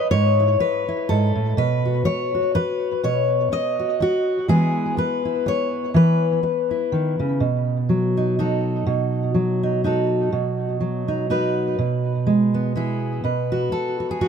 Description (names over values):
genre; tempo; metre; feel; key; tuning
folk, solo fingerstyle acoustic guitar; 124 BPM; 3/4; swing 56% on 8ths; B mixolydian; A4 = 440 Hz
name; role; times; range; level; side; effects
fingerpicked steel-string acoustic guitar; solo; 0.0-14.3 s; G#2 to D#5; -19 LUFS; equal; tape echo
room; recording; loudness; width
light reverb; close, detailed microphones; -19 LUFS; side -7 dB against mid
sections
0.0-7.4 A section; 7.4-13.2 B section; 13.2-14.3 C section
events
none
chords
0.0 E/G#; 1.6 B; 4.5 E; 7.4 B7; 10.3 B; 11.8 E/B; 13.2 B7(no3)